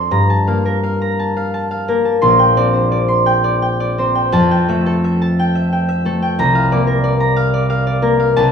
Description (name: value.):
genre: classical, solo harp piece.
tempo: 56-62 BPM (dotted quarters).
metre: 6/8.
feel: rubato.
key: unclear.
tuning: A4 = 439 Hz.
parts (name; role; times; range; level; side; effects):
concert harp; solo; 0.0-8.5 s; Bb1 to C6; -13 LUFS; equal; none.
room: moderate recital hall reverb, RT60 1.4 s.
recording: studio reverb.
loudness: -13 LUFS.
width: side -7 dB against mid.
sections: 0.0-8.5 A section.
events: none.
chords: 0.1 Gm9; 2.2 Bb69; 4.3 Fmaj9; 6.4 C9sus4.